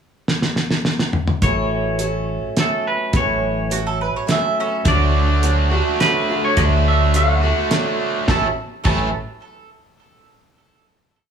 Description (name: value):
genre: folk rock and heartland rock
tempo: 105 BPM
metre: 3/4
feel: straight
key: A major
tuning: A4 = 438 Hz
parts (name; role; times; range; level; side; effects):
- damped 70s drum kit; drums; 0.3-9.0 s; crash cymbal, hi-hat, kick drum, snare drum, toms; -20 LUFS; right 1 dB; none
- twangy electric guitar; melody; 1.4-9.1 s; A4 to A5; -22 LUFS; right 1 dB; none
- picked acoustic archtop guitar; accompaniment; 1.4-9.1 s; A2 to A4; -23 LUFS; equal; none
- hollow-body short-scale fingered electric bass; bass; 1.4-9.1 s; A1 to D2; -19 LUFS; equal; none
- mandolin; second line; 3.7-4.9, 8.3-9.1 s; C#4 to E5; -26 LUFS; right 5 dB; digital delay
- biting overdriven guitar; riff; 4.9-9.1 s; A2 to F#4; -22 LUFS; right 2 dB; none
room: light reverb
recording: small room ambience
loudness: -16 LUFS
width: side -7 dB against mid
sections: 0.0-1.4 pickup bar; 1.4-8.3 verse; 8.3-10.0 final chord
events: drum fill 0.3-1.4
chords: 0.0 N.C.; 1.4 A6; 4.9 D; 8.3 A6